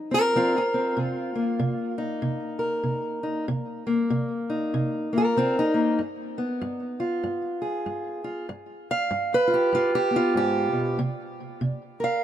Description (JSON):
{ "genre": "acoustic country blues, solo or duo", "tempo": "96 BPM", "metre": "4/4", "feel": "swing 60% on 8ths", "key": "C minor", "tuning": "A4 = 440 Hz", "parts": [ { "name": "fingerpicked acoustic archtop guitar", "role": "solo", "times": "0.0-12.2 s", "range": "G2 to F5", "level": "-23 LUFS", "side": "equal", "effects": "tape echo" } ], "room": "light reverb", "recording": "dark, warm production", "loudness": "-23 LUFS", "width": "side -10 dB against mid", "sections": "0.0-12.2 A section", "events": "none", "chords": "0.0 F5; 1.0 Cm7; 6.0 G7b9; 11.0 C7(no3)" }